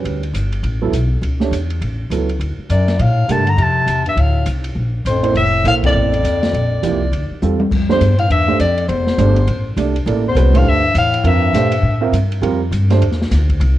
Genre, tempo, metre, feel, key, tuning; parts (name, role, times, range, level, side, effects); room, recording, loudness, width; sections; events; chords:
modal jazz; 204 BPM; 4/4; swing 61% on 8ths; F major from 7.7 s; A4 = 440 Hz
warm upright piano; accompaniment; 0.0-13.0 s; F3 to E5; -20 LUFS; right 6 dB; cassette tape
upright bass; bass; 0.0-13.8 s; F1 to Bb2; -16 LUFS; equal
open jazz drum kit; drums; 0.1-13.7 s; crash cymbal, hi-hat, kick drum, ride cymbal, snare drum, toms; -26 LUFS; left 1 dB; cassette tape
warm soprano saxophone; melody; 2.7-12.1 s; C5 to Bb5; -18 LUFS; equal; cassette tape
breathy bass clarinet; second line; 2.7-12.1 s; E2 to D3; -21 LUFS; left 5 dB; cassette tape
light reverb, studio ambience; home recording on cassette; -13 LUFS; side -14 dB against mid
0.0-7.7 A section; 7.7-13.8 B section
band accent 5.8; drum fill 7.4
0.0 Dmaj9; 3.0 Bbmaj9; 7.7 Fmaj9